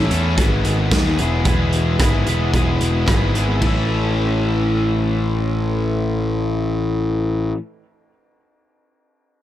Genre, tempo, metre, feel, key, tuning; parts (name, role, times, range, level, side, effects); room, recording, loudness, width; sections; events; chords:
indie rock; 111 BPM; 4/4; straight; A lydian; A4 = 440 Hz
raw garage guitar; riff; 0.0-7.6 s; E2 to B4; -23 LUFS; left 8 dB; overdrive
raw garage guitar; riff; 0.0-7.6 s; E2 to A4; -26 LUFS; right 7 dB; overdrive, wide subtle chorus, digital delay
fuzz picked electric bass; bass; 0.0-7.5 s; E1 to E2; -20 LUFS; equal; overdrive
raw garage drum kit; drums; 0.1-3.7 s; hi-hat, kick drum, ride cymbal, rim click, snare drum; -20 LUFS; equal
little or no reverb; -16 LUFS; side -12 dB against mid
0.0-3.6 A section; 3.6-8.0 B section
0.4 G#m; 1.2 E; 3.6 A